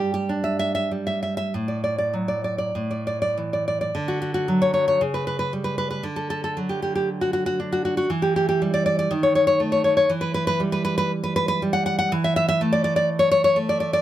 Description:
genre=romantic piece for solo classical guitar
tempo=47-63 BPM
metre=2/4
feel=rubato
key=D major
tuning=A4 = 441 Hz
part: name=nylon-string guitar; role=solo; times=0.0-14.0 s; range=G2 to F#5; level=-20 LUFS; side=equal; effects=none
room=light reverb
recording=none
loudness=-20 LUFS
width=side -12 dB against mid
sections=0.0-3.9 A section; 3.9-14.0 B section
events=none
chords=0.0 G5; 1.5 D/A; 2.7 A5; 3.9 D; 5.0 Bsus2/C#; 6.0 D; 8.1 Em; 9.1 C#sus2/D#; 10.1 Em; 12.1 A5/E

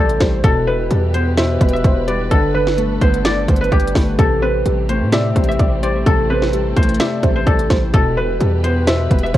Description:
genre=hip hop, trap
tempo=128 BPM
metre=4/4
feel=half-time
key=A minor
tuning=A4 = 442 Hz
part: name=guzheng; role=melody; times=0.0-9.4 s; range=G4 to E5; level=-20 LUFS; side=equal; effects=low-pass filter, tape echo
part: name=warbly dusty pluck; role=second line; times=0.0-9.4 s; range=B4 to D5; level=-26 LUFS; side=equal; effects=chorus, tape echo
part: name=felt-muted upright piano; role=accompaniment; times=0.0-9.4 s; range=B2 to B3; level=-22 LUFS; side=left 2 dB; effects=low-pass filter
part: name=dark studio string section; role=sustained chords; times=0.0-9.4 s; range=E3 to B4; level=-27 LUFS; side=right 1 dB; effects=none
part: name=hard-hitting 808-style bass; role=bass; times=0.0-9.4 s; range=E1 to A2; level=-19 LUFS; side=equal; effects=none
part: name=trap drum kit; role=drums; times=0.1-9.4 s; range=hi-hat, kick drum, snare drum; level=-16 LUFS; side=equal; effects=none
room=studio ambience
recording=worn, warbling old tape, cassette tape, warbly pitch drift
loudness=-13 LUFS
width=side -13 dB against mid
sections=0.0-9.4 A section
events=none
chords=0.4 Em; 2.3 Gadd9; 4.2 Am7; 7.9 Em

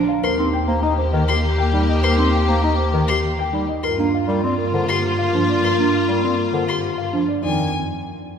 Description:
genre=classical, minimalist pattern music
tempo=100 BPM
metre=3/4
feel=straight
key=unclear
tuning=A4 = 437 Hz
part: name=mellow clarinet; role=second line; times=0.0-7.2 s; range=F4 to G4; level=-25 LUFS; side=left 2 dB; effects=none
part: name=mellow bass clarinet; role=accompaniment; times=0.0-7.7 s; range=D3 to Eb4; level=-25 LUFS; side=left 2 dB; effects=none
part: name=rich symphonic string section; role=sustained chords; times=0.0-7.2 s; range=Bb3 to G4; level=-26 LUFS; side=left 4 dB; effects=none
part: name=buzzing marimba with soft mallets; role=arpeggios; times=0.0-7.7 s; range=D4 to Eb5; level=-24 LUFS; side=right 6 dB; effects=none
part: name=warm double bass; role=bass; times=0.0-7.7 s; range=Eb2 to G2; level=-23 LUFS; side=right 1 dB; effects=none
part: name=dark concert grand piano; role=melody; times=0.1-7.7 s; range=G4 to G5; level=-27 LUFS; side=left 8 dB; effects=none
part: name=rich violin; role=arpeggios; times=0.2-7.7 s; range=Ab5 to C6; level=-28 LUFS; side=left 4 dB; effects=none
room=wet church reverb, RT60 2.8 s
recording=recorded in a church or concert hall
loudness=-17 LUFS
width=side -7 dB against mid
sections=0.0-7.4 A section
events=none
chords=0.2 Eb; 3.8 Gm7; 7.4 Fm7

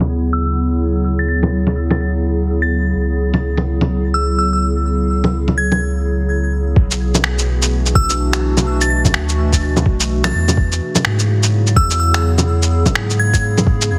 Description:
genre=future garage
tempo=126 BPM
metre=4/4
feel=swing 61% on 16ths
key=B dorian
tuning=A4 = 444 Hz
part: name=warbly tape-like pad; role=sustained chords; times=0.0-14.0 s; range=B2 to G#4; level=-24 LUFS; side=equal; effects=chorus, built-in reverb, sidechain pumping
part: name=warm sub bass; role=bass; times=0.0-14.0 s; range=B1 to G#2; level=-20 LUFS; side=equal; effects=sidechain pumping
part: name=electronic bongos, shaker and finger snaps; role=drums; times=0.0-13.9 s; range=none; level=-20 LUFS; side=equal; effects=none
part: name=glassy synth bell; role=melody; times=0.3-13.4 s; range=E6 to A6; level=-25 LUFS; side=equal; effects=chorus, digital delay
part: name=electronic kick drum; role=drums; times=6.8-13.8 s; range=none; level=-17 LUFS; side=equal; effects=none
room=light reverb, digital ambience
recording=heavily compressed radio sound, multiband compression, low-pass filter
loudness=-16 LUFS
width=mono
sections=0.0-6.8 A section; 6.8-14.0 B section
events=filter sweep on ambient pad 0.0-6.8; filter sweep 0.0-6.8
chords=0.0 Dmaj7; 3.0 C#m7; 6.8 Bm; 10.6 E

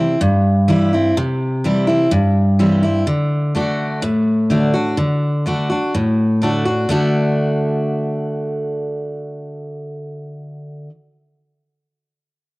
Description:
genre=country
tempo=126 BPM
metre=4/4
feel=straight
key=D mixolydian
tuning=A4 = 440 Hz
part: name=picked steel-string acoustic guitar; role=solo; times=0.0-10.9 s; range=G2 to F#4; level=-16 LUFS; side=equal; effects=cassette tape
room=moderate spring reverb, RT60 1.8 s, small room ambience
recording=home recording on cassette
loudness=-15 LUFS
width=side -22 dB against mid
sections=0.0-6.9 A section; 6.9-10.7 B section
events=none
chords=0.0 C; 3.1 D

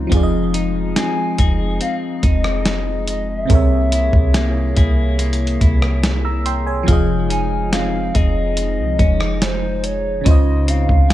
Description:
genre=contemporary R&B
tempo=71 BPM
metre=4/4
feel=straight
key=F minor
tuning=A4 = 440 Hz
part: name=FM electric piano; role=accompaniment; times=0.0-11.1 s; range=C3 to E6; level=-24 LUFS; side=right 2 dB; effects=chorus
part: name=hollow soft pad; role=sustained chords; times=0.0-11.1 s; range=C3 to Db5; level=-28 LUFS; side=right 2 dB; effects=chorus
part: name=clean electric guitar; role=arpeggios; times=0.0-11.1 s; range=C3 to Ab4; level=-25 LUFS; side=left 4 dB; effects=vibrato effect, digital delay
part: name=clean 808-style bass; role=bass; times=0.0-11.1 s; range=F1 to Db2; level=-19 LUFS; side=equal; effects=none
part: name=dusty soul sampler-style drum kit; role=drums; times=0.1-11.1 s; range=hi-hat, kick drum, rim click, snare drum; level=-17 LUFS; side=equal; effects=none
part: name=hollow clarinet-like synth lead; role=melody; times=1.0-11.1 s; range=C5 to Ab5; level=-24 LUFS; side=left 1 dB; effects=chorus
part: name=felt-muted upright piano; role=texture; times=1.0-1.9, 7.7-9.9 s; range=Ab3 to Eb4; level=-32 LUFS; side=left 5 dB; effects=none
room=little or no reverb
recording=dark, warm production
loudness=-15 LUFS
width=side -14 dB against mid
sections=0.0-11.1 A section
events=none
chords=0.1 Fm7; 3.5 C7b9b13; 6.9 Fm7; 10.3 Dbmaj9

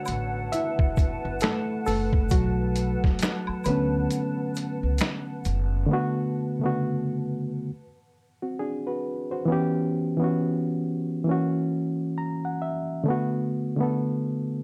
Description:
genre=lo-fi hip hop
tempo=67 BPM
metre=4/4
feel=swing 60% on 16ths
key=B minor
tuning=A4 = 438 Hz
part: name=barky reed electric piano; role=accompaniment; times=0.0-14.6 s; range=C#3 to A#5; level=-28 LUFS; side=equal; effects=overdrive, low-pass filter
part: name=granular cloud pad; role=sustained chords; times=0.0-5.9 s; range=B4 to A5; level=-39 LUFS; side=equal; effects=built-in reverb, low-pass filter
part: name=upright bass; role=bass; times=0.1-5.8 s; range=F#1 to D2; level=-30 LUFS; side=equal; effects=none
part: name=trip hop sampler-style drum kit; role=drums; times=0.1-5.7 s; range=finger snaps, hi-hat, kick drum, snare drum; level=-27 LUFS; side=equal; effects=none
part: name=tube shaker and woodblock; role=percussion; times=0.1-5.7 s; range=none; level=-42 LUFS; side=equal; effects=none
room=moderate studio reverb, RT60 0.6 s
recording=dark, warm production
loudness=-26 LUFS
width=mono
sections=0.0-5.9 A section; 5.9-14.6 B section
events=reed electric piano solo 0.0-5.9; break 4.1-5.9; reed electric piano fill 11.7-13.1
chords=0.0 Bm7; 7.7 N.C.; 9.5 C#m7b5; 11.3 F#7; 13.1 Bm7

